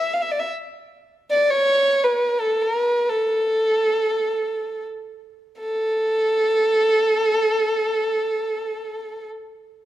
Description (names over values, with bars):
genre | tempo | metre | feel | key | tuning
Persian modal ensemble | free time | none | none | A dastgah homayun | A4 = 440 Hz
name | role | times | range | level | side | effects
dark violin | solo | 0.0-9.3 s | A4 to F5 | -19 LUFS | equal | none
room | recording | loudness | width
moderate scoring stage reverb, RT60 1.8 s | none | -18 LUFS | side -13 dB against mid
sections
0.0-5.6 A section; 5.6-9.8 B section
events
slowing down 0.9-5.6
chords
none